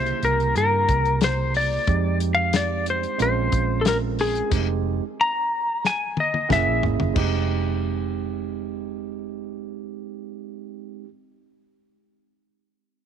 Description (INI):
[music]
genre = straight-eighth soul blues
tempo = 91 BPM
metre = 4/4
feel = straight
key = unclear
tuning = A4 = 440 Hz
[part]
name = clean lap steel guitar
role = melody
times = 0.0-6.8 s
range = Ab4 to Bb5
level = -22 LUFS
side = left 2 dB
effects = none
[part]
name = barky tine electric piano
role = accompaniment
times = 0.0-11.1 s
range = Db3 to Gb5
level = -28 LUFS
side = right 15 dB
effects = none
[part]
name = vintage muted fingered electric bass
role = bass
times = 0.0-11.1 s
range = F1 to G2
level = -25 LUFS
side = right 1 dB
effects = none
[part]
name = warm soul drum kit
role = drums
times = 0.1-7.3 s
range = crash cymbal, hi-hat, kick drum, snare drum, toms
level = -26 LUFS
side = left 3 dB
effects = none
[sound]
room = light reverb, small room reverb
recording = 1960s-style stereo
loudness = -20 LUFS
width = side -8 dB against mid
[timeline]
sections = 0.0-7.2 A section; 7.2-9.8 B section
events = drum fill 5.8-7.2; tine electric piano fill 6.2-7.2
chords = 0.0 C7b9; 1.9 Fm7; 3.2 Bbm7; 4.5 Fm7; 6.5 Gb7; 7.2 Fm7